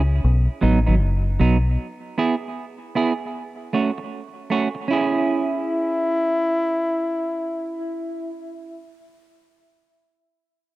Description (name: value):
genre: reggae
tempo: 77 BPM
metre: 4/4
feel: swing 64% on 16ths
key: C# minor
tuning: A4 = 441 Hz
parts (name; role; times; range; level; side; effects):
- deep dub fingered electric bass; bass; 0.0-1.8 s; F#1 to C#2; -17 LUFS; left 1 dB; none
- semi-hollow electric guitar; accompaniment; 0.6-8.9 s; F#3 to G#4; -23 LUFS; right 4 dB; spring reverb, dub echo
- clear trombone; melody; 4.9-8.8 s; E4; -23 LUFS; left 1 dB; dub echo
room: light reverb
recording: dry, close 1970s-style studio recording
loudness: -20 LUFS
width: side -16 dB against mid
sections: 0.0-4.9 A section; 4.9-8.0 B section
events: break 0.0-4.9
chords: 0.2 B; 1.8 E; 3.3 F#m; 4.9 C#m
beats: 0.23 1.01 | 1.79 2.57 3.35 4.12 | 4.90 5.68 6.46 7.24